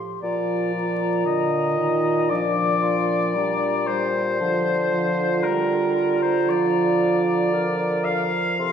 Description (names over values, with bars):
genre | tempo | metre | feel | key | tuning
classical, slow romantic movement for wind quintet | 57 BPM | 4/4 | rubato | Bb major | A4 = 441 Hz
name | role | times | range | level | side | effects
silver concert flute | melody | 0.0-8.7 s | A5 to D6 | -30 LUFS | left 9 dB | none
clear clarinet | accompaniment | 0.0-8.7 s | D4 to Bb4 | -24 LUFS | right 4 dB | none
clear oboe | second line | 0.2-8.7 s | Bb4 to F5 | -24 LUFS | left 4 dB | none
clear French horn | accompaniment | 0.2-8.7 s | D3 to G3 | -28 LUFS | equal | none
warm bassoon | bass | 0.2-8.7 s | Bb2 to D3 | -27 LUFS | equal | none
room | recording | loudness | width
wet recital hall reverb, RT60 1.7 s | heard from further back in the room, vinyl crackle | -19 LUFS | side -8 dB against mid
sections
0.0-8.7 A section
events
none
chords
0.2 Bb; 4.4 Bb/D